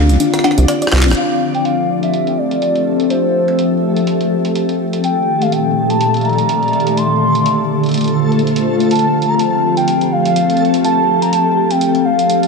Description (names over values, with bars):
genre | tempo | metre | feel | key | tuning
IDM | 124 BPM | 4/4 | swing 56% on 16ths | F major | A4 = 440 Hz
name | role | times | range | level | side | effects
warbly nostalgic lead | melody | 0.0-12.5 s | C5 to C6 | -17 LUFS | equal | chorus, tremolo, digital delay
glassy FM pad | sustained chords | 0.0-12.5 s | Bb2 to F5 | -15 LUFS | left 1 dB | ensemble chorus, built-in reverb, vintage 12-bit sampler grit
soft round pluck | arpeggios | 0.0-1.1 s | C4 to D5 | -18 LUFS | left 3 dB | chorus, cassette tape, ping-pong delay
deep acid bass | bass | 0.0-1.1 s | A1 to D2 | -11 LUFS | equal | none
backwards swelling texture | texture | 0.6-12.5 s | A3 to D5 | -22 LUFS | left 3 dB | built-in reverb
jungle sampler-style drum kit | drums | 0.1-12.5 s | cowbell, handclaps, hi-hat, rim click | -24 LUFS | right 2 dB | low-pass filter on hats, small room ambience, low-pass filter on snare, low-pass filter on perc, ping-pong delay
room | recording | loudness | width
moderate lush hall reverb, RT60 2.1 s | none | -12 LUFS | side -3 dB against mid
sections
0.0-1.2 A section; 1.2-12.5 B section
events
drum fill 0.7-1.2; band accent 1.1; filter sweep on ambient pad 1.2-12.5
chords
0.0 Dm7; 1.2 Fmaj7; 5.0 Ebmaj7; 7.0 Dm7; 8.9 F